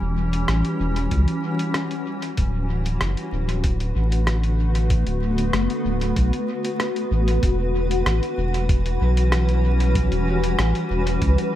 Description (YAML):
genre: ambient dub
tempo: 95 BPM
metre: 4/4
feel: straight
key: E dorian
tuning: A4 = 440 Hz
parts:
  - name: granular cloud pad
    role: sustained chords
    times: 0.0-11.6 s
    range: D3 to B4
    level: -24 LUFS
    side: left 1 dB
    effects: built-in reverb
  - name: round analog bass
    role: bass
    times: 0.0-11.4 s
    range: D1 to C#2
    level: -21 LUFS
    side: equal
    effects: none
  - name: lo-fi sampler-style drum kit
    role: drums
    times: 0.3-11.5 s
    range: hi-hat, rim click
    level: -29 LUFS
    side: equal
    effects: dub echo
  - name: electronic kick drum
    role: drums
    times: 1.1-11.4 s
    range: none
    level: -22 LUFS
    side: equal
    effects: none
room: digital ambience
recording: echo-heavy mix, vinyl crackle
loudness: -19 LUFS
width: side -12 dB against mid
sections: 0.0-7.4 A section; 7.4-11.6 B section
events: none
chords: 0.0 Em69; 2.4 D6; 7.4 Em69